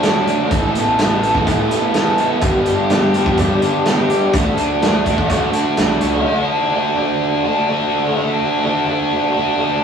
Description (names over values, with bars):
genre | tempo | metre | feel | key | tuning
rock, shoegaze and dream pop | 126 BPM | 4/4 | straight | unclear | A4 = 440 Hz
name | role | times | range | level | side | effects
electric guitar through a small old amp | arpeggios | 0.0-6.2 s | E3 to G4 | -22 LUFS | right 2 dB | none
biting overdriven guitar | riff | 0.0-9.8 s | G2 to A4 | -16 LUFS | left 1 dB | none
overdriven electric guitar | riff | 0.0-6.2 s | G2 to A4 | -24 LUFS | right 6 dB | none
loose indie drum kit | drums | 0.0-6.1 s | hi-hat, kick drum, snare drum | -20 LUFS | right 1 dB | none
fuzz fingered electric bass | bass | 0.5-6.2 s | G1 to D3 | -25 LUFS | equal | overdrive
room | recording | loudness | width
wet stone room reverb, RT60 1.2 s | rough rehearsal-room recording, tube saturation, studio ambience | -14 LUFS | side -7 dB against mid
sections
0.0-6.2 A section; 6.2-9.8 B section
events
none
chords
0.0 D; 0.5 Asus2; 2.4 G; 4.3 D